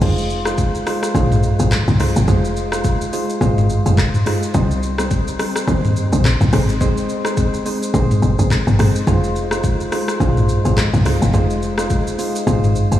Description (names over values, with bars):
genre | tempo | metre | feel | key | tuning
afrobeats | 106 BPM | 4/4 | swing 58% on 16ths | F minor | A4 = 440 Hz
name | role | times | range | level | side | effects
soft electric-piano-like synth keys | accompaniment | 0.0-13.0 s | G3 to C5 | -20 LUFS | equal | chorus
woody log drum bass | bass | 0.0-13.0 s | F1 to Eb2 | -18 LUFS | left 1 dB | none
afro-pop drum kit | drums | 0.0-13.0 s | crash cymbal, handclaps, hi-hat, kick drum, rim click, shaker, toms | -19 LUFS | equal | none
room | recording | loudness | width
light reverb, digital ambience | small room reverb | -15 LUFS | side -12 dB against mid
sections
0.0-13.0 A section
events
none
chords
0.0 Fm7; 4.5 Cm; 6.5 Ab; 9.1 Fm7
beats
| 0.02 0.58 1.15 1.71 | 2.28 2.85 3.41 3.98 | 4.54 5.11 5.68 6.24 | 6.81 7.37 7.94 8.51 | 9.07 9.64 10.21 10.77 | 11.34 11.90 12.47